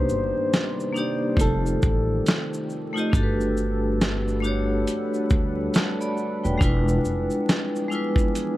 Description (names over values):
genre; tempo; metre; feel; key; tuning
lo-fi hip hop; 69 BPM; 4/4; swing 60% on 16ths; unclear; A4 = 440 Hz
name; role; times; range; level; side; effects
soft struck synth lead; melody; 0.0-2.7 s; A4 to C5; -29 LUFS; left 1 dB; chorus, low-pass filter, analog delay
vibraphone with hard mallets; accompaniment; 0.0-8.6 s; G#3 to B5; -25 LUFS; equal; low-pass filter
deep dark ambient pad; sustained chords; 0.0-8.6 s; C3 to F#5; -33 LUFS; right 1 dB; chorus, built-in reverb, low-pass filter
upright bass; bass; 0.1-7.3 s; D#1 to D2; -26 LUFS; equal; none
dusty soul sampler-style drum kit; drums; 0.1-8.6 s; hi-hat, kick drum, shaker, snare drum; -23 LUFS; equal; none
room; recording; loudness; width
light reverb, digital ambience; vinyl crackle; -21 LUFS; side -16 dB against mid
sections
0.0-8.6 A section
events
none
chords
0.0 Cm7; 1.4 F9; 3.1 Gmaj9; 6.6 E7b9